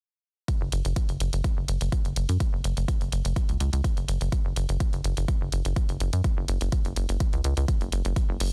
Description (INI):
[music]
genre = progressive house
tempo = 125 BPM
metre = 4/4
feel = straight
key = unclear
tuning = A4 = 440 Hz
[part]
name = electronic hi-hat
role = drums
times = 0.5-8.5 s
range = none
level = -39 LUFS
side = equal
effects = studio reverb
[part]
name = electronic kick drum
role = drums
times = 0.5-8.3 s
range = none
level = -29 LUFS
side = equal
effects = overdrive, studio reverb
[part]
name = tight sequencer bass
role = bass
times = 0.6-8.5 s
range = F#1 to F#2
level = -28 LUFS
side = equal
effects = sidechain pumping
[sound]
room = little or no reverb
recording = dense, heavily limited modern master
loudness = -27 LUFS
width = mono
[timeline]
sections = 0.5-8.5 A section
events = none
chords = none